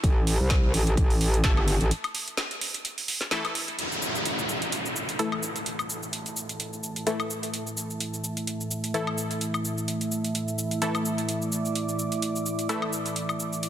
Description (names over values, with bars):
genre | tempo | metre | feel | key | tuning
bass house | 128 BPM | 4/4 | swing 55% on 16ths | unclear | A4 = 440 Hz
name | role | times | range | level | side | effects
band-passed chord stab | stabs | 0.0-13.7 s | E3 to A4 | -32 LUFS | left 1 dB | chorus, sidechain pumping, dub echo
metallic wobble bass | bass | 0.0-1.9 s | G1 to C2 | -23 LUFS | equal | chorus, overdrive, sidechain pumping
electronic kick drum | drums | 0.0-1.5 s | none | -23 LUFS | equal | none
garage drum kit | drums | 0.0-13.7 s | cabasa, hi-hat, snare drum, woodblock | -31 LUFS | equal | overdrive
dark analog pad | sustained chords | 3.8-13.7 s | A3 to D6 | -30 LUFS | right 1 dB | chorus, vintage 12-bit sampler grit, sidechain pumping
downlifter | sound effects | 3.8-7.5 s | none | -31 LUFS | equal | none
room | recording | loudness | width
light reverb, digital ambience | dense, heavily limited modern master | -25 LUFS | side -11 dB against mid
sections
0.0-3.8 A section; 3.8-13.7 B section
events
break 1.9-3.8; filter sweep on analog synth pad 3.8-13.7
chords
0.0 A5